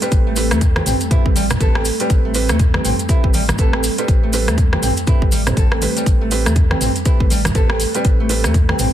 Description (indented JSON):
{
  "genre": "afro house",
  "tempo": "121 BPM",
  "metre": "4/4",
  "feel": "swing 60% on 16ths",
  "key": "A minor",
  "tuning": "A4 = 441 Hz",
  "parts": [
    { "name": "ethereal airy pad", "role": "sustained chords", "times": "0.0-8.9 s", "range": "G3 to B4", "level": "-26 LUFS", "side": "right 2 dB", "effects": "ensemble chorus, built-in reverb, sidechain pumping" },
    { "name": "nylon-string guitar", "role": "arpeggios", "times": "0.0-8.9 s", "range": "G3 to A4", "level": "-23 LUFS", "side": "equal", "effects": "sidechain pumping, dub echo" },
    { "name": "felt-muted upright piano", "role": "stabs", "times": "0.0-8.9 s", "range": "C4 to C5", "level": "-25 LUFS", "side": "right 5 dB", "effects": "sidechain pumping, dub echo" },
    { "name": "house drum kit", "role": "drums", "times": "0.0-8.9 s", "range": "hi-hat, rim click, toms", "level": "-22 LUFS", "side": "right 1 dB", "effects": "none" },
    { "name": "maracas", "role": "percussion", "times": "0.0-8.9 s", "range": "none", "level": "-28 LUFS", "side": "left 2 dB", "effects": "none" },
    { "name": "warm sub bass", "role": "bass", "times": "0.1-8.9 s", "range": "A1 to E2", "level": "-20 LUFS", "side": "equal", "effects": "sidechain pumping" },
    { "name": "electronic kick drum", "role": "drums", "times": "0.1-8.7 s", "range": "none", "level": "-15 LUFS", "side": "equal", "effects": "none" },
    { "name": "congas", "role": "percussion", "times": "0.5-8.8 s", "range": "none", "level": "-26 LUFS", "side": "right 1 dB", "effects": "none" }
  ],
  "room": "small room ambience",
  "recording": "dense, heavily limited modern master",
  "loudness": "-14 LUFS",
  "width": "side -11 dB against mid",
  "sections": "0.0-8.9 A section",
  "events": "none",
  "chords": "0.0 Am9"
}